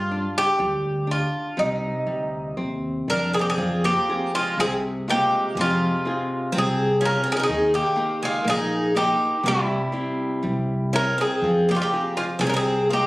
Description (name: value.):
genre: fado-style ballad.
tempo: 61 BPM.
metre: 2/4.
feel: rubato.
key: C minor, F minor from 3.6 s.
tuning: A4 = 440 Hz.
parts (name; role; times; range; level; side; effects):
Irish bouzouki; melody; 0.0-13.1 s; Eb4 to Bb4; -22 LUFS; equal; plate reverb.
flamenco guitar; accompaniment; 0.0-13.1 s; C3 to G5; -29 LUFS; left 1 dB; none.
upright bass; bass; 0.0-13.0 s; Bb1 to G2; -27 LUFS; equal; none.
picked twelve-string acoustic guitar; second line; 3.1-13.1 s; G3 to Eb4; -29 LUFS; right 1 dB; none.
room: light reverb.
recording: recorded on a phone in the room, studio reverb.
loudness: -20 LUFS.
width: side -19 dB against mid.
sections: 0.0-3.6 A section; 3.6-13.1 B section.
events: none.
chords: 0.0 G5; 1.6 Cm; 3.6 Fm; 7.5 Eb; 9.4 C; 11.4 Fm.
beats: 0.59 | 1.56 2.56 | 3.58 4.58 | 5.56 6.53 | 7.49 8.45 | 9.44 10.43 | 11.43 12.41.